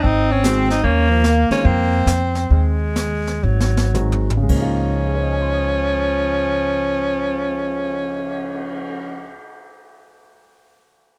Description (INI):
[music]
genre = jazz, small-group swing and bop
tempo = 105-150 BPM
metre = 4/4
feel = swing 65% on 8ths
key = Db major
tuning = A4 = 440 Hz
[part]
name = warm tenor saxophone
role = melody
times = 0.0-9.4 s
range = F3 to Eb4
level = -23 LUFS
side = equal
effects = none
[part]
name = breathy alto saxophone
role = second line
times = 0.0-9.4 s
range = F3 to C4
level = -26 LUFS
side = equal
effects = none
[part]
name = upright bass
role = bass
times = 0.0-9.4 s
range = Ab1 to F2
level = -22 LUFS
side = equal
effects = none
[part]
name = jazz brush drum kit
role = drums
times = 0.0-8.9 s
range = brushed snare drum, crash cymbal, cymbal swell, hi-hat, kick drum, snare drum, toms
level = -28 LUFS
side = equal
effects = none
[part]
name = warm grand piano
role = accompaniment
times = 0.4-10.5 s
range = Db3 to Ab6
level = -28 LUFS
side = equal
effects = none
[sound]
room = little or no reverb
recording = close, detailed microphones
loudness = -19 LUFS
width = mono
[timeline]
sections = 0.0-4.5 A section; 4.5-9.1 B section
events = slowing down 0.8-4.5; drum fill 3.4-4.5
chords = 0.0 Ab7; 0.8 Ebsus2; 1.6 F5; 2.5 Ab/Eb; 3.4 Ab7; 4.5 Db6